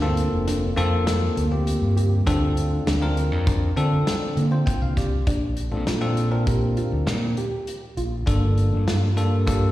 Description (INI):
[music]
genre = progressive instrumental, band music in an uneven meter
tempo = 100 BPM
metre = 5/4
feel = straight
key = Bb major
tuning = A4 = 440 Hz
[part]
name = bell-like tine electric piano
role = accompaniment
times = 0.0-9.7 s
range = Bb3 to G5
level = -26 LUFS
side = left 2 dB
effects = slapback echo
[part]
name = soft round pluck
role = arpeggios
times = 0.0-9.6 s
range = Bb3 to G4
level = -30 LUFS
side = right 1 dB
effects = chorus, ping-pong delay, slapback echo
[part]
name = overdriven fingered electric bass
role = bass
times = 0.0-9.7 s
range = F1 to D3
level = -22 LUFS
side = equal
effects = none
[part]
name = loose indie drum kit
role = drums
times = 0.2-9.6 s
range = hi-hat, kick drum, snare drum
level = -27 LUFS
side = equal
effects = none
[sound]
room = light reverb, studio ambience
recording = live gig heard through the venue's PA, recital hall reverb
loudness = -20 LUFS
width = side -15 dB against mid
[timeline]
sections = 0.0-5.3 A section; 5.3-9.7 B section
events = tine electric piano fill 4.4-5.3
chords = 0.0 Gm11; 2.3 Bbmaj7/D; 5.3 Bbmaj7; 8.3 Gm7